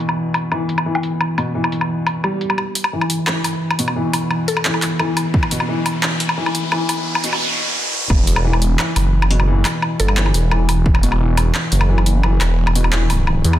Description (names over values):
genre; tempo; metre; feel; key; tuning
half-time drum and bass; 174 BPM; 4/4; half-time; unclear; A4 = 437 Hz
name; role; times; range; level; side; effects
felt-muted upright piano; arpeggios; 0.0-13.6 s; B2 to G3; -21 LUFS; left 1 dB; low-pass filter, digital delay
drum and bass drum kit; drums; 0.0-13.6 s; handclaps, hi-hat, woodblock; -20 LUFS; left 1 dB; overdrive, low-pass filter on perc, studio ambience, low-pass filter on hats, low-pass filter on snare
riser and noise sweep; sound effects; 5.1-8.1 s; none; -24 LUFS; right 1 dB; none
mallet-like synth pluck; melody; 4.5-5.0, 10.0-10.5 s; A4; -27 LUFS; left 1 dB; chorus, digital delay
electronic kick drum; drums; 5.3-5.4, 8.1-8.2, 10.9 s; none; -16 LUFS; equal; studio ambience
phased detuned saw bass; bass; 8.1-13.6 s; E1 to E2; -15 LUFS; equal; phaser
room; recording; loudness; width
moderate echo chamber reverb, RT60 1.5 s; dense, heavily limited modern master, high-pass filter; -15 LUFS; side -13 dB against mid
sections
0.0-2.6 A section; 2.6-8.1 B section; 8.1-13.6 C section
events
build-up 2.6-8.1; filter sweep on felt piano 2.6-8.1; filter sweep 2.6-8.1; riser 5.1-8.1; noise sweep 6.7-8.1; drop 8.1-13.6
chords
0.0 Em; 2.6 E5; 8.1 Esus2